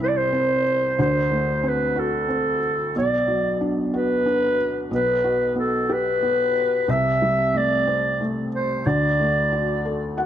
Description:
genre	pop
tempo	61 BPM (dotted quarters)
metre	6/8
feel	straight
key	unclear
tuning	A4 = 440 Hz
part	growling clarinet	melody	0.0-10.2 s	A4 to E5	-21 LUFS	equal	tape echo
part	felt-muted upright piano	accompaniment	0.0-10.3 s	B1 to F#5	-24 LUFS	equal	none
room	light reverb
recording	nothing above 11.0 kHz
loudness	-19 LUFS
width	side -10 dB against mid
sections	0.0-10.3 A section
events	felt piano fill 9.8-10.3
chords	0.0 C; 1.0 D7; 2.9 Bm; 4.9 Gmaj7/B; 6.9 Am7/C; 8.8 D

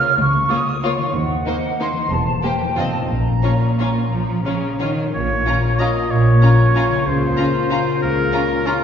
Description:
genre	classical, orchestral ballroom waltz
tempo	167-200 BPM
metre	3/4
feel	rubato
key	Bb minor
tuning	A4 = 442 Hz
part	small flute group	second line	0.0-4.8 s	Gb5 to F6	-22 LUFS	right 2 dB	none
part	concert harp	arpeggios	0.0-8.8 s	Bb2 to Db5	-24 LUFS	left 3 dB	none
part	clear symphonic cello section	bass	0.2-8.3 s	Db2 to F3	-22 LUFS	right 1 dB	none
part	rich symphonic double bass section	bass	0.2-8.3 s	E1 to Eb2	-23 LUFS	right 1 dB	none
part	warm symphonic violin section	melody	0.5-8.7 s	C5 to Bb5	-30 LUFS	left 3 dB	none
part	rich symphonic violin section	second line	0.5-8.7 s	Eb4 to G4	-29 LUFS	left 2 dB	none
part	rich symphonic viola section	accompaniment	0.5-8.7 s	Bb3 to Db4	-29 LUFS	right 1 dB	none
part	warm oboe	second line	5.1-8.8 s	F4 to Eb5	-20 LUFS	right 1 dB	none
part	mellow French horn section	sustained chords	5.1-8.8 s	Bb3 to F4	-23 LUFS	left 5 dB	none
room	wet concert hall reverb, RT60 1.9 s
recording	recorded in a church or concert hall, nothing above 7.5 kHz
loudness	-16 LUFS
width	side -8 dB against mid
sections	0.0-5.1 A section; 5.1-8.8 B section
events	none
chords	0.0 Bbm/Db; 1.1 Cm7b5/Eb; 2.1 C7/E; 2.8 F7; 3.1 Bbm; 7.1 Bbm/Db

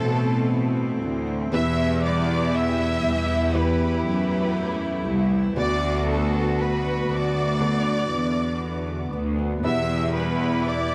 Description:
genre	pop ballad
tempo	59 BPM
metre	4/4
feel	straight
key	E minor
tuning	A4 = 440 Hz
part	rich studio violin section	melody	0.0-10.9 s	A4 to E6	-30 LUFS	equal	none
part	rich chamber cello section	second line	0.0-10.9 s	C4 to F#4	-32 LUFS	equal	none
part	dark baby grand piano	accompaniment	0.0-10.9 s	B2 to C5	-34 LUFS	equal	none
part	lush unison pad	sustained chords	0.0-10.9 s	D3 to G4	-35 LUFS	equal	chorus, phaser
part	fingerpicked steel-string acoustic guitar	arpeggios	0.0-10.9 s	E2 to F#4	-35 LUFS	equal	none
part	rich symphonic cello section	bass	0.0-10.9 s	C2 to B2	-27 LUFS	equal	none
room	light reverb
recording	dry, close 1970s-style studio recording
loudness	-23 LUFS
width	mono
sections	0.0-10.9 A section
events	none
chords	0.0 Am; 1.5 Em; 5.6 Bm/D; 9.6 Em

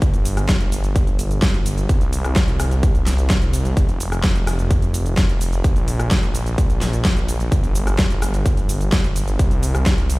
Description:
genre	EDM, festival progressive house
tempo	128 BPM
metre	4/4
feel	straight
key	unclear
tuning	A4 = 440 Hz
part	detuned saw bass	bass	0.0-10.2 s	F1 to C2	-20 LUFS	equal	tube saturation, sidechain pumping
part	big-room dance drum kit	drums	0.0-10.2 s	hi-hat, rim click, shaker, snare drum	-24 LUFS	equal	none
part	electronic kick drum	drums	0.0-10.0 s	none	-18 LUFS	equal	none
room	little or no reverb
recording	played on a big sound system in a bare room, large studio reverb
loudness	-16 LUFS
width	side -22 dB against mid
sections	0.0-10.2 A section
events	none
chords	none

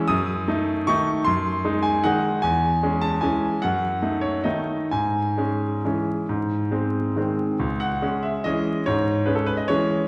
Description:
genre	classical, piano waltz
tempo	122-162 BPM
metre	3/4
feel	rubato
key	C# minor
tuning	A4 = 441 Hz
part	bright grand piano	solo	0.0-10.1 s	C#2 to D#6	-23 LUFS	equal	none
room	wet concert hall reverb, RT60 1.7 s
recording	heard from further back in the room, vinyl crackle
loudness	-23 LUFS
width	mono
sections	0.0-7.6 A section; 7.6-10.1 B section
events	none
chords	0.1 D#dim/F#; 1.2 G#7/F#; 2.4 C#m/E; 3.6 D#dim/F#; 4.9 C#m/G#; 6.3 G#; 7.6 C#m

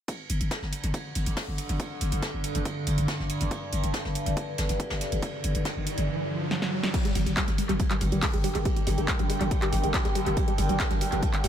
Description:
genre	driving peak-time techno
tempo	140 BPM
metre	4/4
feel	straight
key	G phrygian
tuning	A4 = 438 Hz
part	overtone-sweeping drone	drone	0.9-11.5 s	G2 to D3	-33 LUFS	equal	chorus, built-in reverb, sidechain pumping
part	electronic kick drum	drums	0.1-11.3 s	none	-29 LUFS	equal	high-pass filter on kick, high-pass filter on room
part	soft brush drum kit	drums	0.1-11.5 s	hi-hat, ride cymbal, snare drum	-38 LUFS	right 1 dB	sidechain pumping on cymbals, high-pass filter on cymbals, sidechain pumping on hats, high-pass filter on hats, high-pass filter on snare, high-pass filter on room, analog delay
part	techno drum kit	drums	0.1-11.5 s	crash cymbal, handclaps, hi-hat, snare drum	-32 LUFS	right 1 dB	analog delay
part	growling 808-style bass	bass	0.3-11.5 s	G1	-30 LUFS	equal	overdrive, sidechain pumping, low-pass filter
part	riser	sound effects	5.0-6.9 s	none	-35 LUFS	right 2 dB	none
part	tight sequenced synth	riff	6.9-11.5 s	G3 to Ab3	-31 LUFS	right 1 dB	chorus, phaser, tube saturation, sidechain pumping, analog delay
part	ethereal airy pad	texture	8.0-11.5 s	D4 to G5	-33 LUFS	right 1 dB	ensemble chorus, built-in reverb, tremolo, sidechain pumping
room	moderate echo chamber reverb, RT60 2.3 s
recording	echo-heavy mix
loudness	-25 LUFS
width	side -10 dB against mid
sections	0.1-6.9 A section; 6.9-11.5 B section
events	riser 5.0-6.9; drum fill 6.5-6.9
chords	0.1 G5; 6.9 Gm

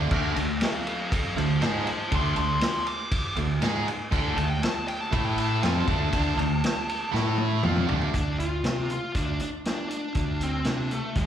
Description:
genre	classic rock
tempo	120 BPM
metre	4/4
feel	straight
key	D minor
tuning	A4 = 440 Hz
part	crunchy overdriven guitar	riff	0.0-8.1 s	D3 to A4	-32 LUFS	left 10 dB	phaser, slapback echo
part	distorted electric guitar	riff	0.0-8.1 s	D3 to A4	-31 LUFS	right 10 dB	overdrive, slapback echo
part	fuzz fingered electric bass	bass	0.0-11.3 s	D2 to C3	-28 LUFS	equal	overdrive
part	vintage drum kit	drums	0.1-11.3 s	crash cymbal, hi-hat, kick drum, ride cymbal, snare drum, toms	-28 LUFS	equal	none
part	bluesy overdriven lead guitar	melody	0.6-11.3 s	A3 to D6	-30 LUFS	left 1 dB	distortion, slapback echo
room	light reverb, small room ambience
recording	live gig heard through the venue's PA, club reverb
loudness	-24 LUFS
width	side -10 dB against mid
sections	0.0-8.1 A section; 8.1-11.3 B section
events	lead electric guitar solo 0.0-8.1; drum fill 7.1-8.1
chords	0.0 D5; 5.1 A5; 5.6 Dm; 7.1 A5; 7.6 Dm

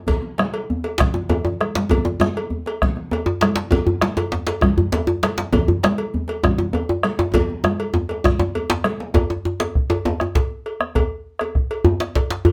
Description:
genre	west african traditional, West African drum ensemble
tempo	132 BPM (dotted quarters)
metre	12/8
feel	straight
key	none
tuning	none
part	bombo	percussion	0.1-12.3 s	none	-23 LUFS	equal	none
part	congas	percussion	0.1-9.0 s	none	-27 LUFS	equal	none
part	cowbell	percussion	0.1-12.5 s	none	-29 LUFS	equal	none
part	djembe	percussion	0.1-12.4 s	none	-28 LUFS	equal	none
part	djembe	percussion	1.0-12.5 s	none	-22 LUFS	equal	none
room	moderate small room ambience, RT60 0.5 s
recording	none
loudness	-21 LUFS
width	mono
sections	0.0-9.2 A section; 9.2-12.5 A section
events	drum fill 1.1-1.9, 7.3-9.2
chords	none

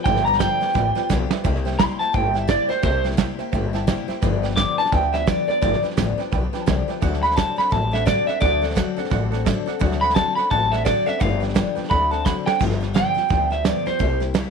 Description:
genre	rockabilly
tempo	172 BPM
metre	4/4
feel	swing 60% on 8ths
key	G mixolydian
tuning	A4 = 440 Hz
part	electric guitar through a small old amp	melody	0.0-14.2 s	C5 to D6	-20 LUFS	right 1 dB	tape echo
part	picked steel-string acoustic guitar	accompaniment	0.0-14.5 s	G2 to A4	-27 LUFS	left 14 dB	none
part	tack piano	accompaniment	0.0-12.6 s	A4 to B5	-32 LUFS	right 13 dB	none
part	upright bass	bass	0.1-14.4 s	G1 to D2	-24 LUFS	left 2 dB	none
part	soft brush drum kit	drums	0.1-14.4 s	crash cymbal, hi-hat, kick drum, snare drum	-24 LUFS	right 4 dB	none
room	light reverb, studio reverb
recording	1960s-style stereo with parts hard left and right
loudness	-18 LUFS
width	side -6 dB against mid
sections	0.0-12.6 A section; 12.6-14.5 B section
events	drum fill 1.1-1.4, 12.3-12.6; honky-tonk piano fill 6.3-7.0; clean electric guitar solo 12.6-14.5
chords	0.0 G7; 1.4 C7; 4.2 G7; 7.0 D7; 11.2 G7; 11.9 D7; 12.6 G7

